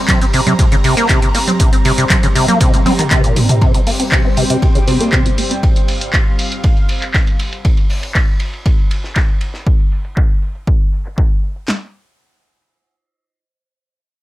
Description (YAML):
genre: acid house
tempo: 119 BPM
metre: 4/4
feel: straight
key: unclear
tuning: A4 = 441 Hz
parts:
  - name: lush unison pad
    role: sustained chords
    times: 0.0-7.6 s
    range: G3 to Bb5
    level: -22 LUFS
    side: equal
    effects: chorus, phaser, sidechain pumping
  - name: deep acid bass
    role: riff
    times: 0.1-5.5 s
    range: Bb2 to C4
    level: -16 LUFS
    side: equal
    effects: wide subtle chorus, sidechain pumping, dub echo
  - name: cloth-damped thuddy drum kit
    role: drums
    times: 0.1-9.7 s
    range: hi-hat, ride cymbal, snare drum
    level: -29 LUFS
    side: right 1 dB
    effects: high-pass filter on cymbals, high-pass filter on hats, high-pass filter on snare, high-pass filter on room
  - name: punchy analog drum machine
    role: drums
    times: 0.1-11.8 s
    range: handclaps, kick drum, snare drum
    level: -14 LUFS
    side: equal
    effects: none
  - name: punchy analog drum machine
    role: drums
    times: 0.1-11.7 s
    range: congas, handclaps, hi-hat, shaker, toms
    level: -18 LUFS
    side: right 1 dB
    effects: low-pass filter on hats, low-pass filter on perc, low-pass filter on snare, low-pass filter on toms
room: small room ambience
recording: none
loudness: -12 LUFS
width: side -16 dB against mid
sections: 0.0-3.6 A section; 3.6-11.7 B section; 11.7-14.2 C section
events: drop 0.0-3.6; drum fill 2.6-3.6; filter sweep on drum 3.6-11.7; filter sweep on acid bass 3.6-5.6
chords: 0.0 C5; 11.7 N.C.